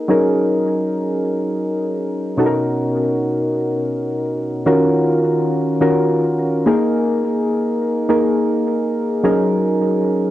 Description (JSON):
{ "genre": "R&B", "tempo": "105 BPM", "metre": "4/4", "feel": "swing 64% on 16ths", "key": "Eb minor", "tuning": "A4 = 441 Hz", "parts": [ { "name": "soft electric-piano-like synth keys", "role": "solo", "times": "0.0-10.3 s", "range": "B2 to Bb4", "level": "-16 LUFS", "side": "equal", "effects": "chorus, cassette tape, analog delay" } ], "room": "wet studio ambience, RT60 0.5 s", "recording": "home recording on cassette", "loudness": "-16 LUFS", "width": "side -14 dB against mid", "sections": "0.0-4.7 A section; 4.7-10.3 B section", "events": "none", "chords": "0.1 Gb6; 2.4 Bmaj7; 4.7 Ebm7; 6.7 Absus2; 9.2 Gb6" }